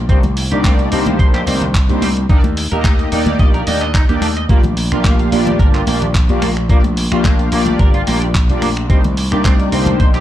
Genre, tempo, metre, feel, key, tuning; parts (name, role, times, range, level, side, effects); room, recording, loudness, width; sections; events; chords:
nu-disco, nu disco; 109 BPM; 4/4; swing 54% on 16ths; Bb major; A4 = 440 Hz
gritty slap bass; bass; 0.0-10.2 s; G1 to Eb2; -19 LUFS; equal; overdrive
mellow synth brass; accompaniment; 0.1-10.2 s; Bb3 to F5; -19 LUFS; equal; chorus, sidechain pumping, digital delay
electric guitar at the edge of break-up; riff; 0.1-10.2 s; Bb3 to Eb5; -25 LUFS; right 3 dB; lush chorus, low-pass filter, digital delay
dusty soul sampler-style drum kit; drums; 0.1-10.2 s; finger snaps, handclaps, hi-hat; -24 LUFS; equal
electronic kick drum; drums; 0.1-10.1 s; -12 LUFS; equal
congas; percussion; 0.2-10.0 s; -23 LUFS; left 2 dB
digital ambience; dark, warm production; -12 LUFS; side -12 dB against mid
0.0-10.2 A section
0.1 Cm9; 2.3 Ebmaj7; 4.5 Bb6; 8.9 Cm9